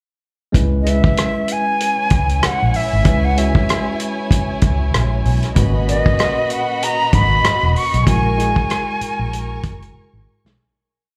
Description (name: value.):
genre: lush 1970s-style soul.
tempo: 96 BPM.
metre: 4/4.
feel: swing 58% on 16ths.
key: C# dorian.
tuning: A4 = 439 Hz.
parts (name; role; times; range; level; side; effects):
tine electric piano; accompaniment; 0.5-10.6 s; A#2 to B4; -26 LUFS; equal; overdrive, slapback echo.
vintage muted fingered electric bass; bass; 0.5-10.6 s; E1 to C#2; -20 LUFS; equal; none.
warm soul drum kit; drums; 0.5-10.6 s; hi-hat, kick drum, rim click, snare drum; -19 LUFS; equal; none.
jazz flute; melody; 0.8-9.9 s; D#5 to C#6; -22 LUFS; equal; slapback echo.
warm studio violin section; second line; 1.8-10.5 s; E4 to C#6; -29 LUFS; equal; slapback echo, tape echo.
room: small room ambience.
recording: live gig heard through the venue's PA, club reverb.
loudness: -17 LUFS.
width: mono.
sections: 0.5-10.6 A section.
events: fade-out 8.1-10.6; drum fill 9.9-10.6.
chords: 0.5 C#m7; 5.6 G#m11; 8.1 F#9/A#.